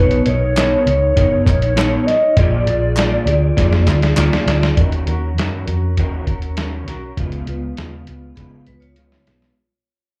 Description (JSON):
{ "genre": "indie pop, bedroom pop", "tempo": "100 BPM", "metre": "4/4", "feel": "straight", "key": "Eb minor", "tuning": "A4 = 440 Hz", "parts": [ { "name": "hollow clarinet-like synth lead", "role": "melody", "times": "0.0-4.2 s", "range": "Cb5 to D#5", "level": "-21 LUFS", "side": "equal", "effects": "phaser, subtle chorus, plate reverb, slapback echo, tape echo" }, { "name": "mellow electric guitar", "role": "accompaniment", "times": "0.0-9.6 s", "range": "Db3 to D5", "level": "-24 LUFS", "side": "equal", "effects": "ensemble chorus, warbly pitch drift, plate reverb, slapback echo" }, { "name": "vintage muted picked electric bass", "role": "bass", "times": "0.0-9.5 s", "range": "F#1 to Db3", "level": "-20 LUFS", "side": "equal", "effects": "none" }, { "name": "lo-fi sampler-style drum kit", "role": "drums", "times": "0.1-9.6 s", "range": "hi-hat, kick drum, snare drum", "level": "-22 LUFS", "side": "equal", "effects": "none" }, { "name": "group handclap", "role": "percussion", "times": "0.6-4.3 s", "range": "none", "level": "-32 LUFS", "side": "equal", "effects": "none" }, { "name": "vibraphone with medium hard mallets", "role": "second line", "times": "8.4-9.5 s", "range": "Cb4 to Db5", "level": "-59 LUFS", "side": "equal", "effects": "analog chorus, plate reverb, tape echo" } ], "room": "moderate club ambience, RT60 0.5 s", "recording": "live gig heard through the venue's PA, club ambience", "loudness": "-16 LUFS", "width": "mono", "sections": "0.0-4.8 A section; 4.8-9.6 B section", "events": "drum fill 3.6-4.8, 8.4-9.6; fade-out 4.8-9.6", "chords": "0.0 Bmaj9; 2.4 Bb7; 4.8 Ebm7; 7.2 Db7", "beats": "0.57 1.17 1.77 | 2.37 2.96 3.56 4.16 | 4.76 5.36 5.96 6.56 | 7.16 7.76 8.36 8.96" }